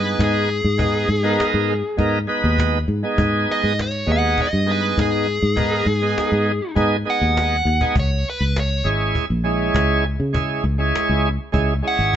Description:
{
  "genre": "straight-eighth soul blues",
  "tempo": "100 BPM",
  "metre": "4/4",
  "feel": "straight",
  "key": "G# minor",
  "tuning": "A4 = 439 Hz",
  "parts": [
    { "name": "dark smooth lead guitar", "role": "melody", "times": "0.0-12.2 s", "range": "G#4 to F#5", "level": "-22 LUFS", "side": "left 1 dB", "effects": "overdrive" },
    { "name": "bright tonewheel organ", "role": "accompaniment", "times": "0.0-12.2 s", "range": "G#3 to B4", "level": "-21 LUFS", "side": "right 2 dB", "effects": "slow rotary speaker, overdrive" },
    { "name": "fingered electric bass", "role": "bass", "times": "0.0-12.2 s", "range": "G#1 to C#3", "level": "-20 LUFS", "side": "left 1 dB", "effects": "none" },
    { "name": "cajon", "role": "drums", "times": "0.2-12.2 s", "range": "none", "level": "-25 LUFS", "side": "equal", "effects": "none" }
  ],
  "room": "light reverb",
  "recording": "band playing live in one room, nothing above 7.8 kHz",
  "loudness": "-17 LUFS",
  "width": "side -10 dB against mid",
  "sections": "0.0-12.2 A section",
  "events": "drum fill 7.7",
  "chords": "0.0 G#m; 8.0 C#m",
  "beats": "0.20 | 0.79 1.39 1.99 2.58 | 3.18 3.78 4.37 4.97 | 5.57 6.17 6.76 7.36 | 7.96 8.55 9.15 9.75 | 10.35 10.94 11.54 12.14"
}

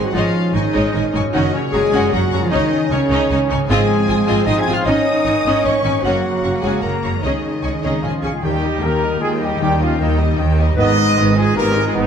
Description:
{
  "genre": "cinematic",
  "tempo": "153 BPM",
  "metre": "3/4",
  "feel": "straight",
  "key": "unclear",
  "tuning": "A4 = 440 Hz",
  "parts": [
    { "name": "warm symphonic violin section", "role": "melody", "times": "0.0-12.1 s", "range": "Cb5 to Ab6", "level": "-27 LUFS", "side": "left 3 dB", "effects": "none" },
    { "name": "warm clarinet", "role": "second line", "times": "0.0-12.1 s", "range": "Bb3 to Ab5", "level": "-22 LUFS", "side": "left 3 dB", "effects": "none" },
    { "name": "warm symphonic violin section", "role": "second line", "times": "0.0-12.1 s", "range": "Bb3 to Eb6", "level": "-26 LUFS", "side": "left 2 dB", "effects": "none" },
    { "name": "rich symphonic viola section", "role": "accompaniment", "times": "0.0-12.1 s", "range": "Eb3 to Ab4", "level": "-24 LUFS", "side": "equal", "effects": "none" },
    { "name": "bright trombone section", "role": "sustained chords", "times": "0.0-12.1 s", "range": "Ab2 to Db4", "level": "-24 LUFS", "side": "right 4 dB", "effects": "none" },
    { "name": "concert harp", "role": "arpeggios", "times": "0.0-12.1 s", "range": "Gb2 to Eb5", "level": "-26 LUFS", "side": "left 8 dB", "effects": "none" },
    { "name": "rich symphonic cello section", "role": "bass", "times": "0.0-12.1 s", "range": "Eb2 to Ab4", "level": "-22 LUFS", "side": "right 2 dB", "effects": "none" },
    { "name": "rich symphonic double bass section", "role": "bass", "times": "0.0-12.1 s", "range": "Gb1 to Eb2", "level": "-22 LUFS", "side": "right 2 dB", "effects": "none" },
    { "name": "timpani", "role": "percussion", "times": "3.7-4.2 s", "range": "Ab2", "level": "-24 LUFS", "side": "right 2 dB", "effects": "none" },
    { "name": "mellow small flute group", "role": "second line", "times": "7.8-12.1 s", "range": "Eb5 to Eb6", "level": "-27 LUFS", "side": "left 2 dB", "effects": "none" },
    { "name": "mellow French horn section", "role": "sustained chords", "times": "7.8-12.1 s", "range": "Eb3 to Eb4", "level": "-26 LUFS", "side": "left 5 dB", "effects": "none" },
    { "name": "brilliant trumpet section", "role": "stabs", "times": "7.8-12.1 s", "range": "Eb4 to Eb5", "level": "-22 LUFS", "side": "right 2 dB", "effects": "none" }
  ],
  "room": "moderate scoring stage reverb, RT60 1.8 s",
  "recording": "dark, warm production",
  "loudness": "-14 LUFS",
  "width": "side -7 dB against mid",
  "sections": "0.0-8.4 A section; 8.4-12.1 B section",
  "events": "none",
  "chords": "0.2 Dbsus2/Ab; 1.3 Gb; 2.5 Dbsus2; 3.7 Ab6; 4.9 Dbsus2/Ab; 6.0 Gb; 7.2 Dbsus2; 8.4 Eb; 10.8 Abm",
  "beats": "| 0.15 0.55 0.94 | 1.34 1.73 2.12 | 2.52 2.91 3.30 | 3.69 4.09 4.47 | 4.87 5.26 5.65 | 6.04 6.43 6.83 | 7.23 7.63 8.03 | 8.43 8.83 9.22 | 9.62 10.01 10.40 | 10.79 11.18 11.57 | 11.97"
}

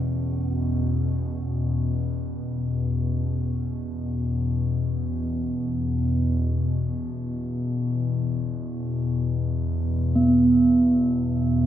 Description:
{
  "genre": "world meditative, free-time meditation music",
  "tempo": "free time",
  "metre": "none",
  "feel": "none",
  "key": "unclear",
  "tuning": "A4 = 440 Hz",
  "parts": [
    { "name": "warbly tape-like pad", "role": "drone", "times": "0.0-11.7 s", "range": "E2 to B2", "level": "-23 LUFS", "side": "left 1 dB", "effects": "chorus, built-in reverb" },
    { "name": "bronze singing bowl", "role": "texture", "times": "0.0-11.7 s", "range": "B3 to C#4", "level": "-25 LUFS", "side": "right 2 dB", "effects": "none" }
  ],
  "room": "wet scoring stage reverb, RT60 2.1 s",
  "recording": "none",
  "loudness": "-22 LUFS",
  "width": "side -11 dB against mid",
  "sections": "0.0-11.7 A section",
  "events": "none",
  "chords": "none",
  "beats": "free time"
}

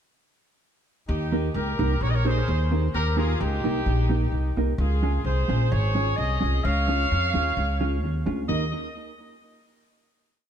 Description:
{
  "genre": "ska",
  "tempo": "130 BPM",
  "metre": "4/4",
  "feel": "straight",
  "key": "Eb mixolydian",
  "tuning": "A4 = 440 Hz",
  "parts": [
    { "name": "warm horn section", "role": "melody", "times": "1.1-8.7 s", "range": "Eb4 to F5", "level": "-28 LUFS", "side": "equal", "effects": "tape echo" },
    { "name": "upright bass", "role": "bass", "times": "1.1-8.7 s", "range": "Ab1 to F2", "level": "-24 LUFS", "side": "equal", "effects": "none" },
    { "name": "mellow electric guitar", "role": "accompaniment", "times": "1.3-8.6 s", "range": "Ab3 to Bb4", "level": "-29 LUFS", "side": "right 2 dB", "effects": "tape echo" }
  ],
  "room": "light reverb",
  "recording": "dark, warm production",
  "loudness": "-22 LUFS",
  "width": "side -8 dB against mid",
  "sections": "1.1-8.5 head; 8.5-10.3 final chord",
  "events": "none",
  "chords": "1.1 Eb; 4.8 Db; 8.5 Eb",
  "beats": "| 1.08 1.54 2.00 2.47 | 2.93 3.39 3.86 4.32 | 4.78 5.25 5.71 6.17 | 6.63 7.10 7.56 8.02 | 8.49"
}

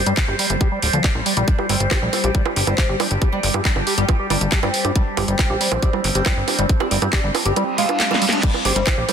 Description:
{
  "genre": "psychedelic trance",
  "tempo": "138 BPM",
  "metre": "4/4",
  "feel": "straight",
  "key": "unclear",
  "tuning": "A4 = 440 Hz",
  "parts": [
    { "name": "overtone-sweeping drone", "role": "sustained chords", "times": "0.0-9.1 s", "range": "G3 to C5", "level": "-26 LUFS", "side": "right 2 dB", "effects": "chorus, built-in reverb, phaser, sidechain pumping" },
    { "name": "liquid acid bass", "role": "riff", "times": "0.0-9.1 s", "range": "F3 to G4", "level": "-25 LUFS", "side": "moving between left 3 dB and right 3 dB", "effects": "chorus, auto-pan, sidechain pumping, ping-pong delay" },
    { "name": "plucky analog bass", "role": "bass", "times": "0.1-9.0 s", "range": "D1 to G2", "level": "-22 LUFS", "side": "equal", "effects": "tube saturation" },
    { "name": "garage drum kit", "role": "drums", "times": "0.1-9.1 s", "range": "bongos, crash cymbal, handclaps, hi-hat, snare drum", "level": "-22 LUFS", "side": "right 3 dB", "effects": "none" },
    { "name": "electronic kick drum", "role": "drums", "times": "0.2-9.0 s", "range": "none", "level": "-19 LUFS", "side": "equal", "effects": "none" },
    { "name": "oud", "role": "melody", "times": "1.5-9.1 s", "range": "C4 to G4", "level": "-26 LUFS", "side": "left 1 dB", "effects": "phaser, sidechain pumping, ping-pong delay" },
    { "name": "reverse cymbal", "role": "sound effects", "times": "7.7-8.4 s", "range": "none", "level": "-28 LUFS", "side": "right 2 dB", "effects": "none" }
  ],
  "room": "light reverb, digital ambience",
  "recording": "dense, heavily limited modern master",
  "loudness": "-16 LUFS",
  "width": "side -8 dB against mid",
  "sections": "0.0-8.4 A section",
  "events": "filter sweep on acid bass 0.0-8.4; reverse cymbal 7.7-8.4; drum fill 8.0-8.4",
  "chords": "0.0 G5",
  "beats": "0.17 0.61 1.04 | 1.48 1.91 2.35 2.78 | 3.22 3.65 4.09 4.52 | 4.96 5.39 5.83 6.26 | 6.69 7.13 7.56 8.00 | 8.43 8.87"
}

